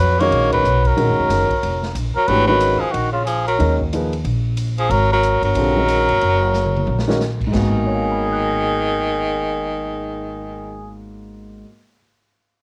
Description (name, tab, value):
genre	modal jazz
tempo	183 BPM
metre	4/4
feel	swing 62% on 8ths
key	G# dorian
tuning	A4 = 440 Hz
part	trumpet with cup mute	melody	0.0-10.9 s	E#4 to C#5	-23 LUFS	equal	cassette tape, plate reverb
part	edgy tenor saxophone	second line	0.0-10.9 s	C#3 to A#3	-24 LUFS	equal	plate reverb
part	upright bass	bass	0.0-11.6 s	E#1 to E#2	-24 LUFS	equal	none
part	warm baby grand piano	accompaniment	0.2-12.0 s	G#2 to C#7	-25 LUFS	equal	plate reverb
part	swinging big-band drum kit	drums	0.2-7.6 s	crash cymbal, hi-hat, kick drum, ride cymbal, snare drum, splash cymbal, toms	-32 LUFS	equal	none
room	wet booth ambience, RT60 0.2 s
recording	home recording on cassette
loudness	-18 LUFS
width	mono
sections	0.0-2.3 A section; 2.3-7.5 B section; 7.5-10.2 C section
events	band accent 0.5; drum fill 6.5-7.2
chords	0.0 D#madd9; 2.3 D#m/G#; 7.5 G#m9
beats	0.32 0.65 | 0.97 1.30 1.63 1.96 | 2.29 2.61 2.94 3.27 | 3.60 3.92 4.25 4.58 | 4.91 5.24 5.57 5.89 | 6.22 6.55 6.88 7.21 | 7.54 7.86 8.19 8.52 | 8.85 9.18 9.51 9.84